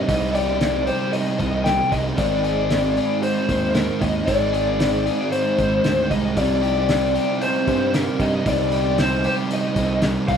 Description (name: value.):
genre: indie rock.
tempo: 115 BPM.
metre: 4/4.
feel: straight.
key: C minor.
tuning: A4 = 440 Hz.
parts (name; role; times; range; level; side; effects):
lead guitar through a small cranked amp; melody; 0.0-10.4 s; Bb4 to G5; -22 LUFS; left 3 dB; overdrive.
overdriven electric guitar; riff; 0.0-10.4 s; G3 to Ab4; -28 LUFS; left 6 dB; none.
thick fuzz guitar; riff; 0.0-10.4 s; Ab2 to Eb4; -23 LUFS; right 5 dB; distortion, ensemble chorus.
modern bright picked electric bass; bass; 0.0-10.4 s; Ab1 to G2; -27 LUFS; equal; none.
cloth-damped thuddy drum kit; drums; 0.1-10.4 s; hi-hat, kick drum, snare drum; -27 LUFS; equal; none.
room: light reverb, small room ambience.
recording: rough home demo mix.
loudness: -18 LUFS.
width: side -7 dB against mid.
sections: 0.0-10.4 A section.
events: none.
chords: 0.0 Cm; 2.2 Ab; 6.4 Cm.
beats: | 0.09 0.61 1.14 1.66 | 2.19 2.71 3.23 3.76 | 4.28 4.80 5.33 5.85 | 6.37 6.89 7.42 7.94 | 8.46 8.98 9.51 10.03.